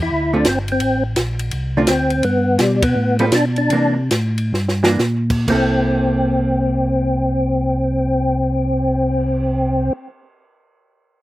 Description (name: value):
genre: soul jazz organ trio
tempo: 118-169 BPM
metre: 4/4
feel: swing 65% on 8ths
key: C mixolydian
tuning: A4 = 441 Hz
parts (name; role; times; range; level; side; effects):
- percussive tonewheel organ; melody; 0.0-9.9 s; G3 to E4; -18 LUFS; left 1 dB; slow rotary speaker, overdrive, chorus vibrato, slapback echo
- mellow tonewheel organ; bass; 0.0-9.9 s; G1 to C3; -20 LUFS; equal; slow rotary speaker
- hollow-body jazz guitar; accompaniment; 0.3-10.0 s; D3 to A4; -21 LUFS; right 2 dB; none
- compact cocktail drum kit; drums; 0.4-9.4 s; crash cymbal, cymbal swell, hi-hat, kick drum, ride cymbal, snare drum; -21 LUFS; equal; none
room: little or no reverb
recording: recorded outdoors, with no room sound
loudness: -15 LUFS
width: side -16 dB against mid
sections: 0.0-5.5 A section; 5.5-9.5 B section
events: slowing down 2.2-5.5; band accent 2.8; drum fill 4.5-5.0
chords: 0.0 C9; 2.2 Gadd9; 3.7 C9; 5.5 C6